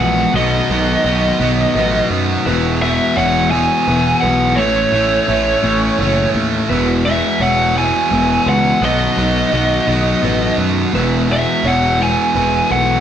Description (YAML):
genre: rock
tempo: 57 BPM (dotted quarters)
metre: 6/8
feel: straight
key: E major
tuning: A4 = 440 Hz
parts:
  - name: biting lead guitar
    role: melody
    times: 0.0-13.0 s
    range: C#5 to G#5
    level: -17 LUFS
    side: right 1 dB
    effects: overdrive
  - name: pedal steel guitar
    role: sustained chords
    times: 0.0-13.0 s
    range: G#3 to E5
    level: -30 LUFS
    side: left 1 dB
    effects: none
  - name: felt-muted upright piano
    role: arpeggios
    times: 0.0-13.0 s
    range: B4 to E5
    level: -28 LUFS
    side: left 2 dB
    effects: digital delay
  - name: twangy electric guitar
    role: arpeggios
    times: 0.0-6.7 s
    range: E2 to C#4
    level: -26 LUFS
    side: left 4 dB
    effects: none
  - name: distorted electric guitar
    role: riff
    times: 0.0-13.0 s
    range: E2 to B3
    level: -19 LUFS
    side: right 5 dB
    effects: overdrive
  - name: fuzz guitar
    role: riff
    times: 0.0-13.0 s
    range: A2 to E4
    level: -21 LUFS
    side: left 5 dB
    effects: distortion
  - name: fuzz picked electric bass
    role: bass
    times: 0.0-13.0 s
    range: E1 to F#2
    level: -19 LUFS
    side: equal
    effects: overdrive
room: wet studio reverb, RT60 0.8 s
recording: band playing live in one room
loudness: -13 LUFS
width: side -9 dB against mid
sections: 0.0-13.0 A section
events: none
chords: 0.3 B7; 2.5 Eadd9; 4.6 A; 6.7 Eadd9; 8.8 B7; 10.9 Eadd9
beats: | 0.34 1.40 | 2.46 3.52 | 4.58 5.64 | 6.70 7.75 | 8.81 9.87 | 10.94 12.00